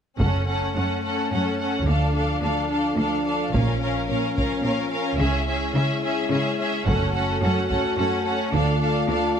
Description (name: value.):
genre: cinematic, epic orchestral film score.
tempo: 108 BPM.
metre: 3/4.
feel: straight.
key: unclear.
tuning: A4 = 440 Hz.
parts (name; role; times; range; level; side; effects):
warm symphonic violin section; melody; 0.2-9.4 s; E5 to F#5; -30 LUFS; equal; none.
rich symphonic violin section; second line; 0.2-9.4 s; G#4 to A#4; -29 LUFS; equal; none.
warm symphonic viola section; accompaniment; 0.2-9.4 s; C#4 to D4; -28 LUFS; equal; none.
dark French horn section; sustained chords; 0.2-9.4 s; F3 to F#4; -28 LUFS; left 3 dB; none.
rich studio cello section; bass; 0.2-9.4 s; D2 to C#3; -27 LUFS; right 1 dB; none.
rich symphonic double bass section; bass; 0.2-9.0 s; F#1 to D2; -25 LUFS; right 1 dB; none.
taiko ensemble; drums; 0.2-8.0 s; none; -26 LUFS; equal; none.
room: moderate recital hall reverb, RT60 1.6 s.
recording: close, detailed microphones.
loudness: -21 LUFS.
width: side -8 dB against mid.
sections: 0.2-9.4 A section.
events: build-up 0.2-9.4.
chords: 0.2 F#m; 1.9 Dm; 3.5 A#m; 5.2 C#m; 6.9 F#m; 8.5 Dm.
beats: | 0.18 0.75 1.31 | 1.87 2.42 2.98 | 3.54 4.10 4.66 | 5.21 5.76 6.31 | 6.87 7.42 7.97 | 8.53 9.09.